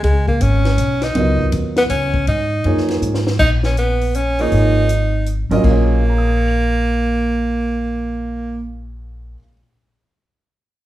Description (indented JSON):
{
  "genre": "modal jazz",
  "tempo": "161 BPM",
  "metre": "3/4",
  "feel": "swing 64% on 8ths",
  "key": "Bb phrygian",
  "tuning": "A4 = 440 Hz",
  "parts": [
    { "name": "edgy tenor saxophone", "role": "melody", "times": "0.0-8.6 s", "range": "Ab3 to Eb4", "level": "-19 LUFS", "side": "right 1 dB", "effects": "none" },
    { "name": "upright bass", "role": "bass", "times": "0.0-9.3 s", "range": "Ab1 to Ab2", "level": "-18 LUFS", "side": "equal", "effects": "none" },
    { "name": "compact cocktail drum kit", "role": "drums", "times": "0.0-5.8 s", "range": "crash cymbal, hi-hat, kick drum, ride cymbal, snare drum", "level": "-25 LUFS", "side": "left 2 dB", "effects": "none" },
    { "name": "warm grand piano", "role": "accompaniment", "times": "1.2-9.6 s", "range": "Bb2 to F7", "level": "-21 LUFS", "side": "right 2 dB", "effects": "none" }
  ],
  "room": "wet large studio reverb, RT60 0.9 s",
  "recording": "heard from further back in the room",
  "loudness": "-15 LUFS",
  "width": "side -14 dB against mid",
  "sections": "0.0-3.4 A section; 3.4-5.6 B section; 5.6-7.9 C section",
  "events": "drum fill 3.0-3.4",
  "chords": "0.0 Dbsus2; 3.4 Dbsus2/Bb; 5.6 Bbm7"
}